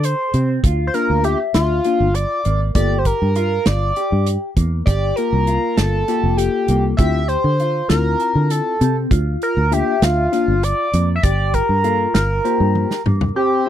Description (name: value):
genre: progressive instrumental, band music in an uneven meter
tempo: 198 BPM (eighths)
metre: 7/8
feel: straight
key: G dorian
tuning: A4 = 440 Hz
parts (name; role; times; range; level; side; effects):
- sync lead; melody; 0.0-13.7 s; F4 to E5; -20 LUFS; equal; chorus
- mellow electric guitar; arpeggios; 0.0-13.7 s; Bb3 to A5; -25 LUFS; equal; phaser
- fingered electric bass; bass; 0.0-13.3 s; F1 to D3; -18 LUFS; equal; none
- natural country drum kit; drums; 0.0-13.4 s; hi-hat, kick drum, snare drum, toms; -19 LUFS; right 1 dB; none
- tine electric piano; accompaniment; 0.9-13.7 s; Bb3 to C5; -22 LUFS; left 9 dB; none
- mellow flugelhorn; second line; 13.4-13.7 s; C4; -21 LUFS; left 5 dB; none
room: light reverb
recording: dry, close 1970s-style studio recording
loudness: -15 LUFS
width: side -10 dB against mid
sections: 0.0-13.4 A section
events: drum fill 12.8-13.4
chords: 0.0 D7(no3); 0.6 Bb/D; 2.8 Gm7; 7.0 Dm7; 9.1 Bb/D; 11.2 Gm7